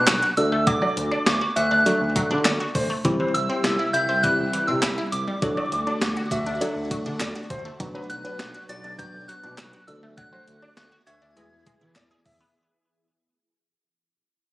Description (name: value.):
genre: synth-pop.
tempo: 101 BPM.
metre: 4/4.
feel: straight.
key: unclear.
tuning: A4 = 443 Hz.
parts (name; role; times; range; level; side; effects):
soft struck synth lead; melody; 0.0-11.9 s; D6 to A6; -25 LUFS; equal; chorus, digital delay.
FM electric piano with tremolo; accompaniment; 0.0-12.2 s; C4 to E5; -28 LUFS; equal; none.
resonant blip pluck; arpeggios; 0.0-12.5 s; E3 to G#4; -30 LUFS; equal; phaser, digital delay.
smooth gliding synth bass; bass; 0.0-12.4 s; B1 to E3; -29 LUFS; equal; none.
gated 80s digital drum machine; drums; 0.1-12.4 s; handclaps, hi-hat, kick drum, snare drum; -25 LUFS; equal; gated reverb, gated reverb snare.
warm concert grand piano; second line; 0.8-12.4 s; B4 to E5; -30 LUFS; left 1 dB; digital delay.
phased string machine; sustained chords; 3.0-12.5 s; C3 to G#4; -34 LUFS; equal; ensemble chorus, phaser.
room: light reverb.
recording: recorded on a phone in the room, club reverb, compression.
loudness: -20 LUFS.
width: side -18 dB against mid.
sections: 0.0-12.6 A section.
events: fade-out 0.0-12.6.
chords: 0.4 D; 3.0 C; 5.4 D; 7.8 Bm; 9.9 D; 11.4 E.